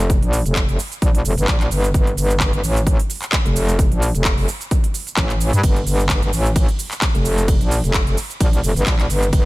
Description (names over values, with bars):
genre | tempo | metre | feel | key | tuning
bass house | 130 BPM | 4/4 | swing 55% on 16ths | G minor | A4 = 441 Hz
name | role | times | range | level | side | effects
metallic wobble bass | bass | 0.0-9.5 s | F1 to G2 | -18 LUFS | equal | chorus, tube saturation, sidechain pumping
big-room dance drum kit | drums | 0.0-9.4 s | cabasa, handclaps, hi-hat, ride cymbal | -24 LUFS | right 1 dB | studio reverb
electronic kick drum | drums | 0.1-9.4 s | none | -18 LUFS | equal | overdrive, studio reverb
room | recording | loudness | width
digital ambience | none | -16 LUFS | side -20 dB against mid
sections
0.0-9.5 A section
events
none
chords
none